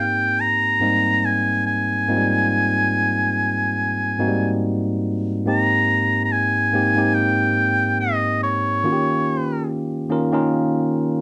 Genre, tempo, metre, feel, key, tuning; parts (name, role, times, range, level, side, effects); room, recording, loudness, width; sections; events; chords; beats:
R&B; 71 BPM; 4/4; swing 55% on 16ths; Ab major; A4 = 440 Hz
clear oboe; melody; 0.0-9.7 s; Db5 to Bb5; -22 LUFS; equal; slapback echo
bright tine electric piano; accompaniment; 0.0-11.2 s; Ab2 to Bb4; -23 LUFS; equal
moderate studio reverb, RT60 0.6 s; -20 LUFS; mono
0.0-5.5 A section; 5.5-11.2 B section
0.0 Abmaj7; 8.8 Eb7
0.39 1.24 | 2.08 2.92 3.77 4.62 | 5.46 6.31 7.15 8.00 | 8.84 9.69 10.53